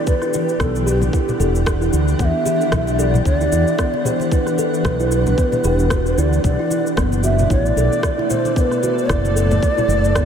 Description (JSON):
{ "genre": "organic downtempo", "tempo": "113 BPM", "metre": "4/4", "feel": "swing 56% on 16ths", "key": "E minor", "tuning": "A4 = 440 Hz", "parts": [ { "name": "breathy mellow low ney", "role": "melody", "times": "0.0-10.3 s", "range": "G4 to F#5", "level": "-21 LUFS", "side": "equal", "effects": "ping-pong delay" }, { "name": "granular cloud pad", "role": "sustained chords", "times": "0.0-10.3 s", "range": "B2 to F#5", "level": "-23 LUFS", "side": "left 1 dB", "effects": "built-in reverb, sidechain pumping" }, { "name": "electronic kick drum", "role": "drums", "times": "0.1-10.3 s", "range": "none", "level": "-20 LUFS", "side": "equal", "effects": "none" }, { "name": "electronic shaker and rim click", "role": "drums", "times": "0.1-10.3 s", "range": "none", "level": "-28 LUFS", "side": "left 1 dB", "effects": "none" }, { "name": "kalimba", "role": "arpeggios", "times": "0.2-10.3 s", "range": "B3 to A4", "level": "-23 LUFS", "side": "right 2 dB", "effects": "tape echo" }, { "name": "congas", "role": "percussion", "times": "0.3-10.0 s", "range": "none", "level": "-30 LUFS", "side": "left 2 dB", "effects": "none" }, { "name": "mellow fretless electric bass", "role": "bass", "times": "0.6-10.3 s", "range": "E1 to E2", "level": "-18 LUFS", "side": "equal", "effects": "ensemble chorus, sidechain pumping" } ], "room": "moderate huge ambient reverb, RT60 9.0 s", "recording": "dreamy mix soaked in reverb", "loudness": "-15 LUFS", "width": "side -8 dB against mid", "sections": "0.0-10.3 A section", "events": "none", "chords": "0.0 Em9; 6.4 Bm7" }